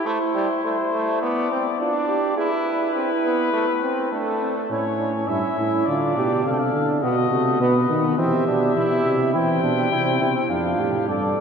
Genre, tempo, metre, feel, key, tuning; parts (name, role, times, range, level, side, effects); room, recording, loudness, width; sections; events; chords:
classical, imitative canzona for brass ensemble; 103 BPM; 4/4; straight; A minor; A4 = 440 Hz
warm trumpet; melody; 0.0-11.4 s; A4 to G5; -26 LUFS; left 7 dB
mellow flugelhorn; second line; 0.0-11.4 s; C4 to B4; -24 LUFS; right 3 dB
brilliant trombone; accompaniment; 0.1-11.4 s; G3 to E4; -25 LUFS; right 1 dB
mellow bass trombone; bass; 4.7-11.4 s; F2 to E3; -23 LUFS; equal
wet cathedral reverb, RT60 4.7 s; dark, warm production; -19 LUFS; side -6 dB against mid
0.0-4.7 A section; 4.7-11.4 B section
0.1 Am; 1.2 Bm; 2.4 E5; 3.5 Am; 4.7 A; 5.9 Dm; 7.0 B; 8.2 Em; 10.5 Dm/F